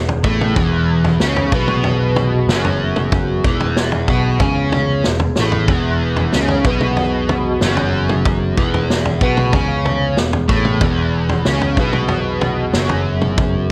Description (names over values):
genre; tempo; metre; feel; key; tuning
psychedelic rock; 94 BPM; 4/4; straight; E major; A4 = 441 Hz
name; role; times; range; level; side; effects
mellow tonewheel organ; sustained chords; 0.0-13.7 s; E3 to G#4; -28 LUFS; equal; slow rotary speaker
overdriven semi-hollow guitar; riff; 0.0-13.7 s; E2 to C#4; -21 LUFS; equal; flanger
picked electric bass; bass; 0.0-13.7 s; E1 to C#2; -23 LUFS; equal; none
vintage drum kit; drums; 0.1-13.5 s; kick drum, snare drum, toms; -21 LUFS; equal; none
room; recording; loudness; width
light reverb, small room ambience; none; -17 LUFS; mono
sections
0.0-13.7 A section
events
drum fill 5.4-5.7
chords
0.0 E